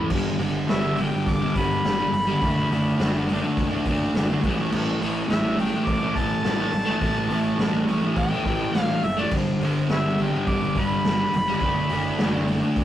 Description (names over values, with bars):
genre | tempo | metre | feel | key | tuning
garage rock duo or trio | 104 BPM | 4/4 | straight | unclear | A4 = 439 Hz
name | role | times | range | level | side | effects
overdriven harmonica | melody | 0.0-12.5 s | B4 to D6 | -27 LUFS | equal | none
fuzz guitar | riff | 0.0-12.8 s | G2 to D4 | -23 LUFS | equal | distortion
fuzz picked electric bass | bass | 0.1-12.8 s | F1 to A1 | -33 LUFS | equal | overdrive
raw garage drum kit | drums | 0.1-12.8 s | crash cymbal, hi-hat, kick drum, snare drum | -26 LUFS | equal | none
room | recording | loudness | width
moderate studio reverb, RT60 0.5 s | rough rehearsal-room recording, warm saturation | -20 LUFS | side -12 dB against mid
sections
0.1-12.8 A section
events
none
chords
0.1 G; 2.4 D/F#; 4.4 A5; 9.3 G; 11.6 D/F#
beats
| 0.11 0.69 1.26 1.84 | 2.42 3.00 3.57 4.15 | 4.72 5.30 5.87 6.45 | 7.02 7.60 8.17 8.75 | 9.32 9.89 10.47 11.04 | 11.62 12.20 12.77